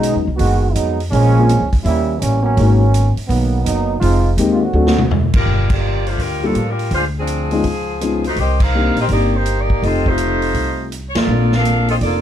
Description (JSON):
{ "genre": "jazz, big band swing", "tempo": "166 BPM", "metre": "4/4", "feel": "swing 66% on 8ths", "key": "G minor from 5.5 s", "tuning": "A4 = 440 Hz", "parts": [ { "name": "warm trombone section", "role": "second line", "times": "0.0-5.1 s", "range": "D3 to Gb4", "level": "-18 LUFS", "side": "right 3 dB", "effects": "none" }, { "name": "dark concert grand piano", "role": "accompaniment", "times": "0.0-12.2 s", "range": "F#3 to A4", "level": "-19 LUFS", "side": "left 4 dB", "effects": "none" }, { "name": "upright bass", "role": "bass", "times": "0.0-12.2 s", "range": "F1 to A2", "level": "-17 LUFS", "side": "equal", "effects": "none" }, { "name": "swinging big-band drum kit", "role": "drums", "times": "0.0-12.1 s", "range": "crash cymbal, hi-hat, kick drum, ride cymbal, snare drum, toms", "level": "-21 LUFS", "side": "equal", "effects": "none" }, { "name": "warm saxophone section", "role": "melody", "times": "5.4-12.2 s", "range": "F3 to F5", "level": "-20 LUFS", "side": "equal", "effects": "none" } ], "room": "light reverb", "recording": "dark, warm production", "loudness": "-14 LUFS", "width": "side -10 dB against mid", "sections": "0.0-5.5 A section; 5.5-12.2 B section", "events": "trombone section solo 0.0-5.5; drum fill 4.7-5.5; band accent 5.3, 5.6, 8.6, 11.1", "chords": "0.0 B6; 1.1 Bbm7; 1.8 Eb7b9; 2.6 Abm9; 4.0 Fm11; 4.7 D7; 5.5 Gm7; 6.9 Dm7b5; 7.6 C#9; 8.4 Cm7; 9.8 F7; 11.3 Bbmaj7" }